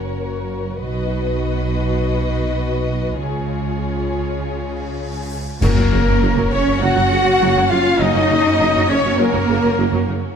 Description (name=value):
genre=cinematic, epic orchestral film score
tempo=101 BPM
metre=4/4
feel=straight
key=F# major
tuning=A4 = 443 Hz
part: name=warm symphonic violin section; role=melody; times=0.0-10.1 s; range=A#4 to F#5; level=-28 LUFS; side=left 4 dB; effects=none
part: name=warm symphonic violin section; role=second line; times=0.0-10.1 s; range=G#4 to F#5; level=-25 LUFS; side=left 3 dB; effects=none
part: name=rich symphonic viola section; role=accompaniment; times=0.0-10.3 s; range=C#3 to F#4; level=-27 LUFS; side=right 2 dB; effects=none
part: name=mellow French horn section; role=sustained chords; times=0.0-10.1 s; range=F#3 to F#4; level=-25 LUFS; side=left 7 dB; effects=none
part: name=rich symphonic cello section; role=bass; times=0.0-10.1 s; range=F#2 to F#4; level=-23 LUFS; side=right 3 dB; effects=none
part: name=rich symphonic double bass section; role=bass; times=0.0-10.1 s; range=F#1 to C#2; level=-23 LUFS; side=right 3 dB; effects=none
part: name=cymbal swell and sub drop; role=sound effects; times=4.9-8.0 s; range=none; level=-30 LUFS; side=left 1 dB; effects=none
part: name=concert flute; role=second line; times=5.6-10.1 s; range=A#4 to F#5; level=-26 LUFS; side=left 1 dB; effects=none
part: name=clear trombone section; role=sustained chords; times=5.6-9.4 s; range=F#3 to C#4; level=-31 LUFS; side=right 2 dB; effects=none
part: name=rich symphonic string section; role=sustained chords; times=5.6-10.3 s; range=A#3 to C#5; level=-26 LUFS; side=equal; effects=none
part: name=clear trumpet section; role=stabs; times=5.6-10.1 s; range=A#4 to F#5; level=-24 LUFS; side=right 2 dB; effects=none
part: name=mellow tuba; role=bass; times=5.6-10.1 s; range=F#1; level=-25 LUFS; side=right 4 dB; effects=none
part: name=clash cymbals and concert bass drum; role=percussion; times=5.6-6.8 s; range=none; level=-23 LUFS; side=left 1 dB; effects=none
part: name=timpani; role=percussion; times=5.6-6.5 s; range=F#2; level=-24 LUFS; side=left 2 dB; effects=none
room=moderate scoring stage reverb, RT60 1.7 s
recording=none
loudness=-16 LUFS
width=side -7 dB against mid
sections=0.0-5.6 A section; 5.6-10.4 B section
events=cymbal swell 4.9-5.6; band accent 5.6-6.2; impact 5.6-8.0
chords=0.0 F#; 0.8 B; 3.2 C#; 5.6 F#